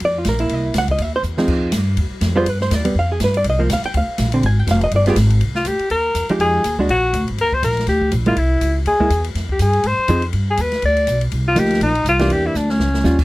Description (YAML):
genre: jazz, small-group swing and bop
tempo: 244 BPM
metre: 4/4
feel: swing 57% on 8ths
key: C minor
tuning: A4 = 438 Hz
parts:
  - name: upright bass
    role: bass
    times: 0.0-13.2 s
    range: F1 to Ab2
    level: -19 LUFS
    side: equal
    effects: none
  - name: open jazz drum kit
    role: drums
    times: 0.0-13.2 s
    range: crash cymbal, hi-hat, kick drum, ride cymbal, snare drum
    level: -26 LUFS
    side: equal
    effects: none
  - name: hollow-body jazz guitar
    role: accompaniment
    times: 0.1-13.2 s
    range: D3 to Ab5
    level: -18 LUFS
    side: right 1 dB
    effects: none
  - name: breathy alto saxophone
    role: melody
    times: 5.6-13.2 s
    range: Db4 to D5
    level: -18 LUFS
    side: left 1 dB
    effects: none
room: little or no reverb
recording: close, detailed microphones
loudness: -15 LUFS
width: side -19 dB against mid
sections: 0.0-5.4 A section; 5.4-13.2 B section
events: drum fill 1.2, 12.6-13.1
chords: 0.0 Ebsus2 (rootless); 0.5 C7#9; 1.5 Fm7; 2.5 G7; 3.5 Cm11; 4.4 Fm9; 4.9 G7b9; 5.4 Cm11; 6.4 Fm9; 6.9 Bbaug7; 7.4 Ebmaj7; 8.4 Caug; 9.4 Fm7; 10.3 G; 11.3 Cm11; 12.3 Em7b5